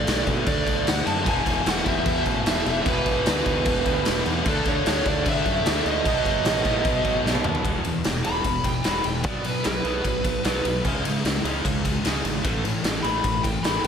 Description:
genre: hard rock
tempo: 150 BPM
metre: 4/4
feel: straight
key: E major from 7.6 s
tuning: A4 = 441 Hz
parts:
  - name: dark smooth lead guitar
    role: melody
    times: 0.0-13.9 s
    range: A4 to B5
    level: -27 LUFS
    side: right 1 dB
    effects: overdrive, slapback echo
  - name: scooped high-gain guitar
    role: riff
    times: 0.0-13.9 s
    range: E2 to D4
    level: -30 LUFS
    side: left 9 dB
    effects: distortion
  - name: tight distorted guitar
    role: riff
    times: 0.0-13.9 s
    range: E2 to D4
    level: -30 LUFS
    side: right 10 dB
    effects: distortion, slapback echo
  - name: fuzz fingered electric bass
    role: bass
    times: 0.0-13.9 s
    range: E1 to D3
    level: -30 LUFS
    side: equal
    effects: overdrive
  - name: raw garage drum kit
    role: drums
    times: 0.1-13.9 s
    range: crash cymbal, kick drum, ride cymbal, snare drum, toms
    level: -25 LUFS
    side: equal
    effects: none
  - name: tight distorted guitar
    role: riff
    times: 1.2-7.6 s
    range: E2 to D4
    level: -32 LUFS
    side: equal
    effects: distortion, slapback echo
room: moderate lush hall reverb, RT60 2.2 s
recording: big arena sound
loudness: -21 LUFS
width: side -7 dB against mid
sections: 0.0-7.6 A section; 7.6-13.9 B section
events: drum fill 7.2-7.6; lead electric guitar solo 7.6-13.9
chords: 0.0 D; 1.3 E5; 4.5 D5; 6.0 B; 7.6 E5; 9.2 B5; 10.8 C#5; 12.4 A5

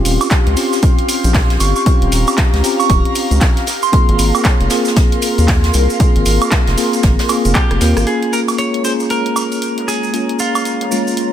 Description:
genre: deep house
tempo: 116 BPM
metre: 4/4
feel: swing 61% on 16ths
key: Bb dorian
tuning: A4 = 443 Hz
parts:
  - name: airy breathy pad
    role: sustained chords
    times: 0.0-11.3 s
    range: Ab3 to C6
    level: -23 LUFS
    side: left 1 dB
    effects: chorus, phaser, sidechain pumping
  - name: bell-like tine electric piano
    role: stabs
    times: 0.0-11.3 s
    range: Ab3 to Bb4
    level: -18 LUFS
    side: left 1 dB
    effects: fast stereo tremolo, sidechain pumping, low-pass filter, dub echo
  - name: round analog bass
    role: bass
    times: 0.0-8.1 s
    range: Eb1 to Eb2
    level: -14 LUFS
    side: equal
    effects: sidechain pumping
  - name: jazz brush drum kit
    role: drums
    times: 0.1-11.3 s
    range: hi-hat, snare drum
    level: -28 LUFS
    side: right 2 dB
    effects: high-pass filter on hats, low-pass filter on hats, high-pass filter on snare, low-pass filter on snare, high-pass filter on room, low-pass filter on room
  - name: punchy analog drum machine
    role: drums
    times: 0.1-11.3 s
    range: handclaps, hi-hat, rim click, woodblock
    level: -21 LUFS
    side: right 2 dB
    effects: none
  - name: maracas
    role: percussion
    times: 0.1-11.3 s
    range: none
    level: -25 LUFS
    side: right 3 dB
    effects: none
  - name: electronic kick drum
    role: drums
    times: 0.3-7.7 s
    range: none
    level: -13 LUFS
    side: equal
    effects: none
  - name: soft synth bell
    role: melody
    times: 1.6-4.3 s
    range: C6 to Db6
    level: -21 LUFS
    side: right 5 dB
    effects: chorus, phaser, vintage 12-bit sampler grit, ping-pong delay
  - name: direct-recorded clean electric guitar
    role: melody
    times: 7.6-11.3 s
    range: F4 to Db5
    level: -21 LUFS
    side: right 1 dB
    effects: lush chorus, tape echo
room: light reverb, studio reverb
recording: none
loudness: -12 LUFS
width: side -10 dB against mid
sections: 0.0-8.1 A section; 8.1-11.3 B section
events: drum fill 7.6-8.1; band accent 7.9; filter sweep on tine electric piano 8.1-11.3; filter sweep on analog synth pad 8.1-11.3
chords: 0.0 Eb13; 3.7 Ab69; 8.1 Bbm7

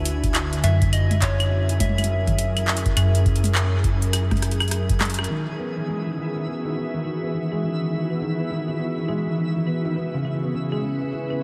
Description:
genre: IDM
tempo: 103 BPM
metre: 4/4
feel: swing 62% on 16ths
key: E lydian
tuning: A4 = 440 Hz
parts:
  - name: glassy FM pad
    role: sustained chords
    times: 0.0-11.4 s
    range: C#3 to E5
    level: -30 LUFS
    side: equal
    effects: ensemble chorus, built-in reverb
  - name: metallic FM bass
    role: bass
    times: 0.0-5.3 s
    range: D2 to F#2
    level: -24 LUFS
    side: equal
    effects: none
  - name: twinkling granular texture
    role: texture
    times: 0.0-11.4 s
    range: E4 to G#5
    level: -39 LUFS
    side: equal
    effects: built-in reverb
  - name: booming analog drum machine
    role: drums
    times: 0.1-11.4 s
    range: claves, handclaps, hi-hat, rim click, toms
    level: -29 LUFS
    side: equal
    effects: low-pass filter on hats, low-pass filter on perc, low-pass filter on toms, low-pass filter on snare, delay
  - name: electronic kick drum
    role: drums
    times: 0.2-5.0 s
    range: none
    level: -28 LUFS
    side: equal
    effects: none
  - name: soft struck synth lead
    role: melody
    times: 0.6-4.7 s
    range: C#5 to E5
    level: -34 LUFS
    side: equal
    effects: chorus, tape echo
  - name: felt-muted upright piano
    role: arpeggios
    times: 5.3-11.4 s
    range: C#3 to B3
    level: -30 LUFS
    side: equal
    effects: vintage 12-bit sampler grit, low-pass filter, delay
room: moderate cathedral reverb, RT60 5.2 s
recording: dreamy mix soaked in reverb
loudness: -23 LUFS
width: mono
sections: 0.0-5.3 A section; 5.3-11.4 B section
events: drum fill 4.1-5.3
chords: 0.0 D6; 0.6 F#7; 5.3 Emaj7; 10.0 C#m7

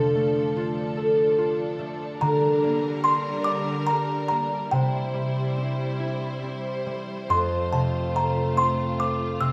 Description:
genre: children's music, lullaby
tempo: 48 BPM (dotted quarters)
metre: 6/8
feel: rubato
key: F major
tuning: A4 = 440 Hz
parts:
  - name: music box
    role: melody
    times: 0.0-9.5 s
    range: G5 to E6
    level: -28 LUFS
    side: equal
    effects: none
  - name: concert harp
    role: accompaniment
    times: 0.0-9.5 s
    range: F2 to D5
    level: -27 LUFS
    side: equal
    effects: none
  - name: rich studio string section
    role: sustained chords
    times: 0.0-9.5 s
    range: D3 to C5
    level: -33 LUFS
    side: equal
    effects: none
room: moderate recital hall reverb, RT60 1.5 s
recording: none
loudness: -25 LUFS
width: mono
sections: 0.0-9.5 A section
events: none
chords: 0.0 Dm; 2.2 Gm/D; 4.7 C; 7.3 F

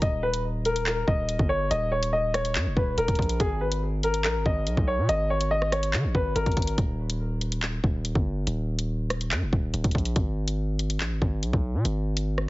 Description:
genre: hip hop, drill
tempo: 142 BPM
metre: 4/4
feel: half-time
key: unclear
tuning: A4 = 439 Hz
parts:
  - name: warm grand piano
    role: melody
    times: 0.0-6.8 s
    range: G#4 to D#5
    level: -27 LUFS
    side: left 1 dB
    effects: low-pass filter, tape echo
  - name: distorted 808-style bass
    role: bass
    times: 0.0-12.5 s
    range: D#1 to D#3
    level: -27 LUFS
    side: equal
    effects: distortion
  - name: drill drum kit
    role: drums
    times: 0.0-12.5 s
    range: handclaps, hi-hat, kick drum, rim click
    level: -27 LUFS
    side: equal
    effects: none
room: little or no reverb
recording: heavily compressed radio sound, multiband compression, nothing above 7.6 kHz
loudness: -24 LUFS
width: side -19 dB against mid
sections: 0.0-12.5 A section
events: none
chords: 0.0 D#5; 3.4 G#madd9; 6.8 D#5; 10.2 G#m

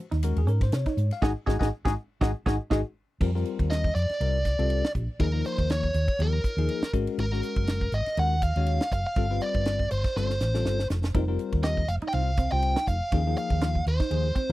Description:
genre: electric jazz fusion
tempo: 121 BPM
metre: 4/4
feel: swing 55% on 16ths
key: unclear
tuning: A4 = 440 Hz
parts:
  - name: bell-like tine electric piano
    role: accompaniment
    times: 0.0-14.5 s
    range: F3 to Ab5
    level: -32 LUFS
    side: left 7 dB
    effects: medium stereo tremolo, phaser
  - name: clean electric guitar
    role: stabs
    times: 0.1-2.8, 11.1-14.5 s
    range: C4 to Ab4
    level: -33 LUFS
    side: right 5 dB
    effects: wide subtle chorus
  - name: hollow-body short-scale fingered electric bass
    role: bass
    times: 0.1-14.5 s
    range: F1 to C3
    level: -26 LUFS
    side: equal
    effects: none
  - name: tight funk drum kit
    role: drums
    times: 0.1-14.5 s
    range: crash cymbal, hi-hat, kick drum, ride cymbal, snare drum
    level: -28 LUFS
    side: equal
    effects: none
  - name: biting lead guitar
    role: melody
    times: 3.7-14.5 s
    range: Bb4 to G5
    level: -30 LUFS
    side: right 1 dB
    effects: overdrive
room: little or no reverb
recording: dry, close 1970s-style studio recording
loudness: -24 LUFS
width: side -17 dB against mid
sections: 0.0-3.2 A section; 3.2-14.5 B section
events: band accent 1.2-3.2; tine electric piano fill 2.5-3.2; drum fill 2.7-3.2, 10.2-11.1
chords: 0.0 Ab7sus4; 3.2 F13sus4; 5.2 Eb9sus4; 6.9 Ab13sus4; 9.2 G9sus4; 11.1 F9sus4; 13.1 Eb13sus4

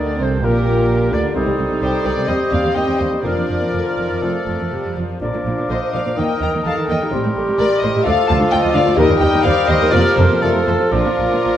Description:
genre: quick classical-period movement for symphony orchestra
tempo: 125 BPM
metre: 4/4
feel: uneven beats, rubato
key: Bb major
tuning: A4 = 442 Hz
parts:
  - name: warm studio violin section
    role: melody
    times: 0.0-11.6 s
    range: Bb4 to Bb5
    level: -23 LUFS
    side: left 5 dB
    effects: none
  - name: clear clarinet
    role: second line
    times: 0.0-11.6 s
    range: Eb4 to D5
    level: -24 LUFS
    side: left 1 dB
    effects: none
  - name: clear oboe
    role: second line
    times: 0.0-11.6 s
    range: A4 to D5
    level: -27 LUFS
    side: right 1 dB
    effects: none
  - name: hollow silver concert flute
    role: second line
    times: 0.0-11.6 s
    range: Bb4 to F6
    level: -27 LUFS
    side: left 1 dB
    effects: none
  - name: warm studio violin section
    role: second line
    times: 0.0-11.6 s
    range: F4 to G5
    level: -25 LUFS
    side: left 2 dB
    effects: none
  - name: mellow bassoon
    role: accompaniment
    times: 0.0-11.6 s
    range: Bb2 to G3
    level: -24 LUFS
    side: right 2 dB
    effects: none
  - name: rich studio viola section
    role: accompaniment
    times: 0.0-11.6 s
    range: C3 to G4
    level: -24 LUFS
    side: right 1 dB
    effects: none
  - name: mellow French horn section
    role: sustained chords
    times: 0.0-11.1 s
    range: Bb2 to G4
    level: -25 LUFS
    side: left 4 dB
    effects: none
  - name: dark studio double bass section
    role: bass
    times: 0.0-11.5 s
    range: F1 to Eb2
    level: -23 LUFS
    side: right 2 dB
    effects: none
  - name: warm studio cello section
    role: bass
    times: 0.0-11.5 s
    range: C2 to Eb3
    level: -23 LUFS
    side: right 2 dB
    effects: none
room: moderate concert hall reverb, RT60 1.9 s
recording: worn, warbling old tape, cassette tape, warbly pitch drift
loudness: -14 LUFS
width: side -11 dB against mid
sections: 0.0-11.6 A section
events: none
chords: 0.0 Gm; 1.4 Cm; 2.3 Cm/Eb; 3.2 Bb/F; 4.2 F; 5.2 Bb; 6.2 Eb; 7.1 Cm13/A; 8.1 Dm; 9.0 Eb; 9.9 Bb/F; 10.4 F; 10.9 Bb

